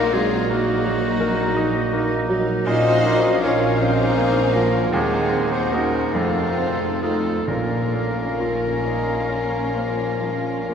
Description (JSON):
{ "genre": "classical, romantic movement for piano and orchestra", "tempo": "41-57 BPM (dotted quarters)", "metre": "12/8", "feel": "rubato", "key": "Bb minor", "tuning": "A4 = 440 Hz", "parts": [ { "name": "clear baby grand piano", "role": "melody", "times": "0.0-10.7 s", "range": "Eb2 to Bb4", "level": "-24 LUFS", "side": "equal", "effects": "none" }, { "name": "rich studio violin section", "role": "melody", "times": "0.0-10.7 s", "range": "Eb4 to C5", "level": "-32 LUFS", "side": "left 3 dB", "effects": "none" }, { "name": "bright clarinet", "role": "second line", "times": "0.0-10.7 s", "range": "Db4 to Eb4", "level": "-32 LUFS", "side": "equal", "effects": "none" }, { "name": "bright oboe", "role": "second line", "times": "0.0-10.7 s", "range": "Gb4 to Eb5", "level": "-30 LUFS", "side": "right 1 dB", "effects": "none" }, { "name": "concert flute", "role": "second line", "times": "0.0-10.7 s", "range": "Eb5 to Gb5", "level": "-31 LUFS", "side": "equal", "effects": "none" }, { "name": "rich studio violin section", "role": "second line", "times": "0.0-10.7 s", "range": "C4 to F4", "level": "-34 LUFS", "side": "left 3 dB", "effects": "none" }, { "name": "mellow bassoon", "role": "accompaniment", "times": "0.0-10.7 s", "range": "Bb3 to F4", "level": "-31 LUFS", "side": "right 2 dB", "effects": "none" }, { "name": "rich studio viola section", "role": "accompaniment", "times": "0.0-10.7 s", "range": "Bb3 to Gb4", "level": "-30 LUFS", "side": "left 1 dB", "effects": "none" }, { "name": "dark French horn section", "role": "sustained chords", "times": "0.0-10.7 s", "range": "Gb4 to Eb5", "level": "-24 LUFS", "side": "left 2 dB", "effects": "none" }, { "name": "rich studio cello section", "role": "bass", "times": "0.0-10.7 s", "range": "Gb3 to Eb4", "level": "-30 LUFS", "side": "right 2 dB", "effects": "none" }, { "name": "warm studio double bass section", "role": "bass", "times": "0.0-10.7 s", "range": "Bb1 to F2", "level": "-28 LUFS", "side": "right 3 dB", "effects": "none" }, { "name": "warm tuba", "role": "bass", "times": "0.0-10.7 s", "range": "F1 to Eb2", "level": "-31 LUFS", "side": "right 2 dB", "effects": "none" }, { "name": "timpani", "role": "percussion", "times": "7.5-8.8 s", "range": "none", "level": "barely audible", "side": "none", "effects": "none" } ], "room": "wet cathedral reverb, RT60 5.4 s", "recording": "none", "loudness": "-18 LUFS", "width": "side -7 dB against mid", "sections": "0.0-10.7 A section", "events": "none", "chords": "0.0 Ebm/Bb; 2.7 Bbm; 4.9 Cdim/Eb; 6.1 F7; 7.5 Bbm" }